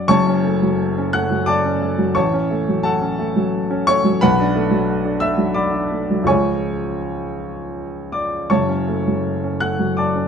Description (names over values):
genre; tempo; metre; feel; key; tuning
classical, romantic character piece for solo piano; 81-91 BPM; 3/4; rubato; F# minor; A4 = 442 Hz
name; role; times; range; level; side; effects
warm baby grand piano; solo; 0.0-10.3 s; F#1 to F#6; -17 LUFS; equal; none
room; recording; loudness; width
moderate large studio reverb, RT60 1.2 s; close, detailed microphones; -16 LUFS; side -7 dB against mid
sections
0.1-10.3 A section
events
none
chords
0.1 F#m; 2.2 F#m/A; 4.2 Bm7; 6.3 C#; 8.5 F#m